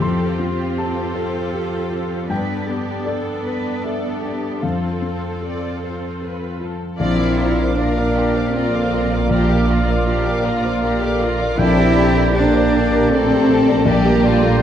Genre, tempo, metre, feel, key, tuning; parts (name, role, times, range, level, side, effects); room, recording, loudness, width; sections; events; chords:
cinematic, emotional film score for orchestra; 78 BPM; 3/4; rubato; F lydian; A4 = 442 Hz
rich symphonic violin section; second line; 0.0-14.6 s; G4 to D6; -29 LUFS; left 4 dB
dark grand piano; accompaniment; 0.0-14.6 s; Bb1 to C6; -22 LUFS; left 2 dB
rich symphonic viola section; accompaniment; 0.0-14.6 s; B3 to F5; -26 LUFS; right 1 dB
rich chamber cello section; bass; 0.0-14.6 s; Bb3 to B4; -22 LUFS; right 2 dB
warm symphonic violin section; melody; 7.0-14.6 s; F4 to D5; -26 LUFS; left 3 dB
dark clarinet; second line; 7.0-14.6 s; D5; -27 LUFS; left 3 dB
mellow cor anglais; second line; 7.0-14.6 s; F5 to G5; -28 LUFS; right 2 dB
mellow French horn section; sustained chords; 7.0-14.6 s; F3 to C4; -22 LUFS; left 3 dB
rich symphonic double bass section; bass; 7.0-14.6 s; Bb1; -22 LUFS; right 2 dB
moderate scoring stage reverb, RT60 1.5 s; dark, warm production; -16 LUFS; side -10 dB against mid
0.0-7.0 A section; 7.0-14.6 B section
0.0 Fadd9; 2.3 Gadd9; 4.6 F; 7.0 Bb; 11.6 Gmadd9/Bb